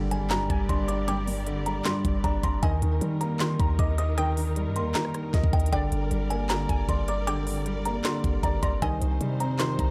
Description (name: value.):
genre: hip hop, trap.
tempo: 155 BPM.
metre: 4/4.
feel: half-time.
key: G phrygian.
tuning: A4 = 441 Hz.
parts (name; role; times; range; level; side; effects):
kalimba; melody; 0.0-9.9 s; G5 to Eb6; -35 LUFS; equal; tape echo.
warbly dusty pluck; second line; 0.0-9.9 s; D5 to C6; -40 LUFS; equal; chorus, phaser, tape echo.
dark baby grand piano; accompaniment; 0.0-9.9 s; G2 to Eb5; -33 LUFS; equal; none.
clear symphonic string section; sustained chords; 0.0-9.9 s; C3 to D5; -40 LUFS; equal; none.
warm 808-style bass; bass; 0.0-9.9 s; G1 to Eb3; -30 LUFS; equal; none.
impact; sound effects; 0.0-1.1 s; none; barely audible; none; none.
trap drum kit; drums; 0.1-9.9 s; handclaps, hi-hat, kick drum, rim click, snare drum; -32 LUFS; equal; none.
room: little or no reverb.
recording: dry, gritty hardware recording.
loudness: -26 LUFS.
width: mono.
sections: 0.0-9.9 A section.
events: impact 0.0-1.1.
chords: 0.0 Gm; 2.6 Eb; 5.7 Gm; 8.8 Cm.